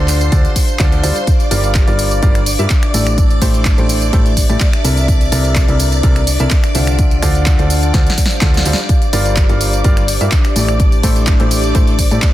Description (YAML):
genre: piano house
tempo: 126 BPM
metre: 4/4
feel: straight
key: G dorian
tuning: A4 = 440 Hz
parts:
  - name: string machine, violins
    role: sustained chords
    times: 0.0-12.3 s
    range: C5 to D6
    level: -23 LUFS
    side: left 1 dB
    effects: ensemble chorus, sidechain pumping
  - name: clear concert grand piano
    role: riff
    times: 0.0-12.2 s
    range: C3 to E5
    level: -20 LUFS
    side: left 1 dB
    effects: sidechain pumping, ping-pong delay
  - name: solid FM bass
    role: bass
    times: 0.0-12.2 s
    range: G1 to A2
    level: -16 LUFS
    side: equal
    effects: sidechain pumping
  - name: warbly tape-like pad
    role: texture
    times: 0.0-12.3 s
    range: D4 to F5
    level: -24 LUFS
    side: equal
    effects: chorus, built-in reverb, phaser, sidechain pumping
  - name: house drum kit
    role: drums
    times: 0.1-12.3 s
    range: finger snaps, handclaps, hi-hat, snare drum, tambourine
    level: -20 LUFS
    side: equal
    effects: none
  - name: electronic kick drum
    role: drums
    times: 0.3-12.3 s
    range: none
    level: -13 LUFS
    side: equal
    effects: none
room: little or no reverb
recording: dense, heavily limited modern master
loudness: -11 LUFS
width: side -14 dB against mid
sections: 0.0-12.3 A section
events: drum fill 7.9-8.9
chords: 0.0 Dm7; 1.3 Gm7; 2.9 Am7; 5.1 C13; 7.0 Dm7; 8.9 Gm7; 10.6 Am7